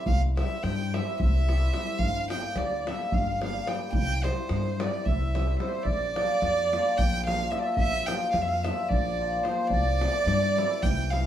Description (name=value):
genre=balkan folk, Balkan wedding band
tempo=218 BPM (eighths)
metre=7/8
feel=straight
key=C mixolydian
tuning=A4 = 440 Hz
part: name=rich violin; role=melody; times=0.0-11.3 s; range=C5 to G5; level=-30 LUFS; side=right 3 dB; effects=plate reverb
part: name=accordion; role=second line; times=0.0-11.3 s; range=C5 to G5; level=-36 LUFS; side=right 4 dB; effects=light tremolo tuning
part: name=cimbalom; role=accompaniment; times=0.0-11.3 s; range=E3 to G4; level=-32 LUFS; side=left 3 dB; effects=none
part: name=upright bass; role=bass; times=0.1-11.3 s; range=G1 to G2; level=-29 LUFS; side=left 1 dB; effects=none
part: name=davul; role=percussion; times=0.1-11.2 s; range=none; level=-31 LUFS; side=equal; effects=none
room=wet studio reverb, RT60 0.5 s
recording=heard from further back in the room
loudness=-24 LUFS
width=side -11 dB against mid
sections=0.0-5.9 A section; 5.9-11.3 B section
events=none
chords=0.0 C; 2.0 Gm; 3.9 C; 5.9 Bb; 9.7 C